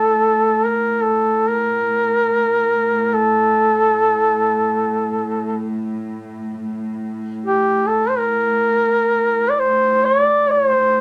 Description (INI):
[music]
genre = caucasian folk, Caucasian lament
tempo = free time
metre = none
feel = none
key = A phrygian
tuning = A4 = 440 Hz
[part]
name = warm duduk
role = melody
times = 0.0-11.0 s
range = G4 to D5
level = -17 LUFS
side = equal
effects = none
[part]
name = dark chamber cello section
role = drone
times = 0.0-11.0 s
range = A2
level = -28 LUFS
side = equal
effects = none
[sound]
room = moderate small room ambience, RT60 0.5 s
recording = none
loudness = -18 LUFS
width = mono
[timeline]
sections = 0.0-11.0 A section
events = none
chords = none